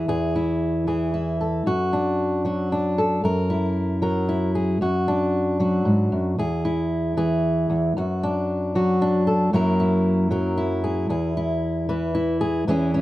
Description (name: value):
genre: folk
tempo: 114 BPM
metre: 3/4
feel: straight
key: E mixolydian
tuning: A4 = 439 Hz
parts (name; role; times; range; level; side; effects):
- fingerpicked steel-string acoustic guitar; solo; 0.0-13.0 s; E2 to B4; -20 LUFS; equal; none
room: moderate studio reverb, RT60 0.5 s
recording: none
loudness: -20 LUFS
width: side -16 dB against mid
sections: 0.1-12.7 A section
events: none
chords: 0.1 E; 1.7 D/F#; 3.2 F#7; 4.8 D/F#; 6.4 E; 7.9 D/F#; 9.5 F#7; 11.1 E